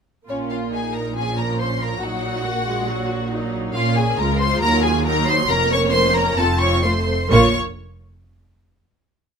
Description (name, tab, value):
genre	quick classical-period movement for string orchestra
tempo	137 BPM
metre	4/4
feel	rubato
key	Bb minor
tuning	A4 = 440 Hz
part	rich studio violin section	melody	0.3-7.6 s	Db5 to Db6	-22 LUFS	left 2 dB	none
part	rich studio violin section	second line	0.3-7.6 s	Db4 to Db5	-25 LUFS	left 2 dB	none
part	warm studio viola section	accompaniment	0.3-7.6 s	F3 to Gb4	-24 LUFS	right 1 dB	none
part	rich studio cello section	bass	0.3-7.6 s	Db2 to Bb2	-25 LUFS	right 2 dB	none
part	warm studio double bass section	bass	0.3-7.6 s	F1 to Eb2	-24 LUFS	right 2 dB	none
room	little or no reverb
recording	close, detailed microphones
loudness	-17 LUFS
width	side -6 dB against mid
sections	0.3-7.3 A section; 7.3-9.1 final chord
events	none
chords	0.3 Bbm; 2.0 Ebm/Bb; 3.8 Bbm; 4.6 Ebm; 5.5 Bbm/F; 6.4 F; 7.3 Bb5